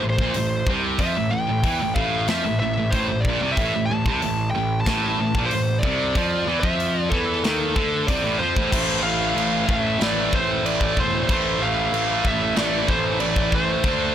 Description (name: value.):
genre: heavy metal.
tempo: 93 BPM.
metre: 4/4.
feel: straight.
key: A minor.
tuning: A4 = 440 Hz.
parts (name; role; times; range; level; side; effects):
high-gain lead guitar; melody; 0.0-14.1 s; A4 to A5; -25 LUFS; left 1 dB; distortion.
high-gain distorted guitar; riff; 0.0-14.1 s; A2 to D4; -24 LUFS; right 7 dB; distortion.
scooped high-gain guitar; riff; 0.0-14.1 s; A2 to D4; -28 LUFS; left 12 dB; distortion.
fuzz picked electric bass; bass; 0.0-14.1 s; E1 to F2; -28 LUFS; left 1 dB; overdrive.
tight metal drum kit; drums; 0.2-14.0 s; crash cymbal, hi-hat, kick drum, snare drum; -26 LUFS; equal; none.
room: studio reverb.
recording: blown-out, overdriven recording, overdrive.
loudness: -19 LUFS.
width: side -10 dB against mid.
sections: 0.0-8.7 A section; 8.7-14.1 B section.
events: none.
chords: 0.0 Am.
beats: 0.35 | 0.99 1.64 2.28 2.93 | 3.57 4.22 4.86 5.51 | 6.15 6.79 7.44 8.08 | 8.72 9.37 10.01 10.65 | 11.29 11.93 12.57 13.21 | 13.84.